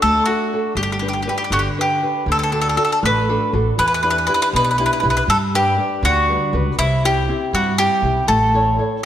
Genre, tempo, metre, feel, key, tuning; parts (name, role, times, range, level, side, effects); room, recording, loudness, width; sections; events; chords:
italian folk, Italian serenade; 80 BPM (dotted quarters); 6/8; straight; D major; A4 = 440 Hz
bowl-back mandolin; melody; 0.0-9.0 s; E4 to B4; -17 LUFS; equal
nylon-string guitar; accompaniment; 0.0-9.1 s; B2 to C#5; -22 LUFS; left 1 dB
upright bass; bass; 0.0-8.8 s; G1 to G2; -22 LUFS; right 1 dB
moderate scoring stage reverb, RT60 1.6 s; -15 LUFS; side -10 dB against mid
0.0-2.3 A section; 2.3-9.1 B section
0.0 D; 0.8 G; 2.3 D; 3.8 Em7; 5.3 G; 6.8 C; 8.3 A